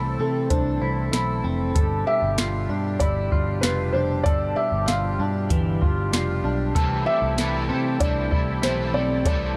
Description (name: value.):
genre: dream pop.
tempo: 96 BPM.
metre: 4/4.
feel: straight.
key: C major.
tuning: A4 = 440 Hz.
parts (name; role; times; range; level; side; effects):
felt-muted upright piano; melody; 0.0-9.6 s; A4 to F5; -29 LUFS; equal; digital delay.
pipe organ, principal; sustained chords; 0.0-9.6 s; B2 to A4; -33 LUFS; equal; none.
clean electric guitar; arpeggios; 0.0-9.6 s; E3 to A4; -30 LUFS; equal; analog chorus, digital delay.
vintage muted picked electric bass; bass; 0.0-9.5 s; F1 to C3; -29 LUFS; equal; none.
soft vintage rhythm box; drums; 0.5-9.4 s; hi-hat, kick drum, snare drum; -26 LUFS; equal; none.
electric guitar at the edge of break-up; accompaniment; 6.8-9.6 s; C3 to A4; -32 LUFS; equal; harmonic tremolo, ensemble chorus.
room: light reverb.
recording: none.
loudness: -23 LUFS.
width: mono.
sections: 0.0-9.6 A section.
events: none.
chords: 0.0 C6; 1.8 G7; 6.8 C6.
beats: 0.51 1.13 | 1.76 2.38 3.01 3.63 | 4.26 4.88 5.51 6.13 | 6.76 7.38 8.01 8.63 | 9.26.